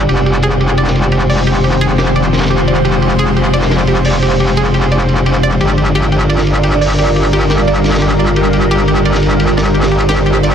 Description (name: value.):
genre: dark technical drum and bass.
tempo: 174 BPM.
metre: 4/4.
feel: straight.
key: G phrygian.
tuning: A4 = 440 Hz.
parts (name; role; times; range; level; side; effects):
swarming drone; sustained chords; 0.0-10.5 s; F3 to G4; -18 LUFS; right 1 dB; built-in reverb.
analog pluck; arpeggios; 0.0-10.5 s; G4 to D5; -19 LUFS; right 1 dB; chorus, digital delay.
metallic wobble bass; bass; 0.0-10.5 s; F1 to G1; -13 LUFS; equal; chorus, tube saturation.
airy breathy pad; texture; 0.0-10.5 s; Eb3 to D5; -18 LUFS; left 1 dB; chorus, phaser.
crunchy breakbeat drum kit; drums; 0.1-10.5 s; hi-hat, ride cymbal, snare drum; -22 LUFS; equal; high-pass filter on cymbals, low-pass filter on cymbals, high-pass filter on hats, low-pass filter on hats, high-pass filter on snare, low-pass filter on snare, high-pass filter on room, low-pass filter on room.
room: light reverb.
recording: dense, heavily limited modern master.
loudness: -10 LUFS.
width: side -8 dB against mid.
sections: 0.0-10.5 A section.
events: none.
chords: 0.1 Fm; 5.6 Gm7.